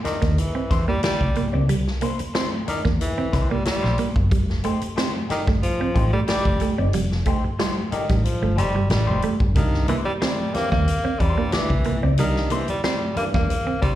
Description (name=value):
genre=funk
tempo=92 BPM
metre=4/4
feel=straight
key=C mixolydian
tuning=A4 = 438 Hz
part: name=electric guitar at the edge of break-up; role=accompaniment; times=0.0-13.9 s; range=A3 to D5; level=-31 LUFS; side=left 6 dB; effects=wah, slapback echo
part: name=clean electric guitar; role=riff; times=0.0-13.9 s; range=G3 to C4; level=-28 LUFS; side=right 6 dB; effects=slapback echo
part: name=swinging big-band drum kit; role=drums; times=0.0-14.0 s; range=hi-hat, kick drum, snare drum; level=-24 LUFS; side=equal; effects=none
part: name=breathy tenor saxophone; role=melody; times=0.1-14.0 s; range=Eb3 to Bb3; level=-26 LUFS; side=equal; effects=slapback echo
part: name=hollow-body short-scale fingered electric bass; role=bass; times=0.1-14.0 s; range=F1 to E2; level=-22 LUFS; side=equal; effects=none
part: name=barky tine electric piano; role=stabs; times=9.6-13.5 s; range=C3 to D4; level=-29 LUFS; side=right 2 dB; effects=slapback echo
room=light reverb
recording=live gig heard through the venue's PA, club reverb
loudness=-19 LUFS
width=side -13 dB against mid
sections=0.0-14.0 A section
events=none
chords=0.0 C9; 4.3 F9; 9.6 C9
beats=0.38 1.03 | 1.69 2.35 3.00 3.66 | 4.31 4.97 5.62 6.28 | 6.93 7.59 8.25 8.90 | 9.56 10.21 10.87 11.53 | 12.18 12.84 13.49